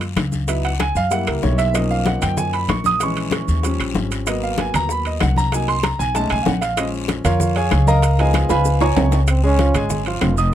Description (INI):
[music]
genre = Afro-Cuban jazz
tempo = 191 BPM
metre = 4/4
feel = straight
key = unclear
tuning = A4 = 440 Hz
[part]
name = clear concert grand piano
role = accompaniment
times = 0.0-10.5 s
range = E3 to D#6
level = -21 LUFS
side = right 1 dB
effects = none
[part]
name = upright bass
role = bass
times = 0.0-10.5 s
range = F1 to F#2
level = -20 LUFS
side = equal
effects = none
[part]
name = congas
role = percussion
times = 0.0-10.4 s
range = none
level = -26 LUFS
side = left 2 dB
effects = none
[part]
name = maracas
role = percussion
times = 0.0-10.5 s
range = none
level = -34 LUFS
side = right 6 dB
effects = none
[part]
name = timbales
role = percussion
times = 0.0-10.4 s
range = none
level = -26 LUFS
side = right 7 dB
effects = none
[part]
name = bongos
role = percussion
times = 0.2-10.4 s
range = none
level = -27 LUFS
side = left 6 dB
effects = none
[part]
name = claves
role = percussion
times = 0.2-10.4 s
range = none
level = -32 LUFS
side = left 10 dB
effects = none
[part]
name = guiro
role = percussion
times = 0.2-10.5 s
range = none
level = -35 LUFS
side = left 9 dB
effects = none
[part]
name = breathy trombone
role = melody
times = 9.3-9.9 s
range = C4 to Db4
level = -22 LUFS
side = right 3 dB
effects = tape echo
[sound]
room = light reverb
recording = close, detailed microphones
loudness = -16 LUFS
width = side -11 dB against mid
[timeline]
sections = 0.0-9.3 A section; 9.3-10.5 A section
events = grand piano solo 0.0-9.3; drum fill 8.3-9.3; trombone solo 9.3-10.5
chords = 0.5 C#m11; 1.1 F#7b9; 1.7 Bmaj9#11; 3.0 A#m7b5; 3.6 D#7; 4.3 G#m9; 5.5 Cm7b5; 6.2 B13; 6.8 A#m7; 8.0 C#13; 9.3 Db